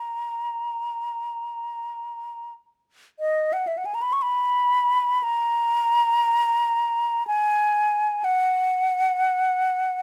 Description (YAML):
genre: classical, free, expressive piece for unaccompanied flute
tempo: 40-65 BPM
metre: 4/4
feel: rubato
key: unclear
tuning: A4 = 440 Hz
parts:
  - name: mellow hollow silver concert flute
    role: solo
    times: 0.0-10.0 s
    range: D#5 to C#6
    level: -24 LUFS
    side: equal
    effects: none
room: light reverb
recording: none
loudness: -23 LUFS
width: mono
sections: 0.0-3.2 A section; 3.2-10.0 B section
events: none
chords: none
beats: 0.76 1.92 | 3.20 4.24 5.26 6.27 | 7.27 8.24 9.19